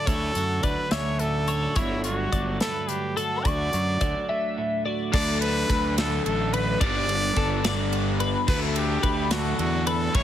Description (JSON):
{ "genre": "math rock and midwest emo", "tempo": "72 BPM (dotted quarters)", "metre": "6/8", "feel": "straight", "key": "D major", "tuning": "A4 = 440 Hz", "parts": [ { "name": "clear trumpet", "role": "melody", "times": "0.0-10.2 s", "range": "E4 to D5", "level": "-28 LUFS", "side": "equal", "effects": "none" }, { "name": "twelve-string electric guitar", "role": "accompaniment", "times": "0.0-6.8 s", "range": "D2 to F#4", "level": "-32 LUFS", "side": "right 6 dB", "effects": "none" }, { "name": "twelve-string electric guitar", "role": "arpeggios", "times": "0.0-10.2 s", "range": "A4 to C#6", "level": "-30 LUFS", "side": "left 6 dB", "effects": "analog chorus, tape echo" }, { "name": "fuzz fingered electric bass", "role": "bass", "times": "0.1-10.2 s", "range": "G1 to F#2", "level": "-28 LUFS", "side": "equal", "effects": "overdrive" }, { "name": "modern studio drum kit", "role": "drums", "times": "0.1-10.2 s", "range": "crash cymbal, hi-hat, kick drum, ride cymbal, snare drum", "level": "-28 LUFS", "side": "equal", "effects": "none" }, { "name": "overdriven electric guitar", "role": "riff", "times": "5.1-10.2 s", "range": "G2 to E4", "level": "-28 LUFS", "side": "equal", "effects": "none" } ], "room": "little or no reverb", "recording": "heavily compressed radio sound", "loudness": "-22 LUFS", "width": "side -10 dB against mid", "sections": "0.0-5.1 A section; 5.1-10.2 B section", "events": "break 4.3-5.1", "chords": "0.0 Dmaj9; 1.8 Gmaj9; 3.5 Dmaj7; 5.1 D6; 6.8 Gadd9; 8.5 D6" }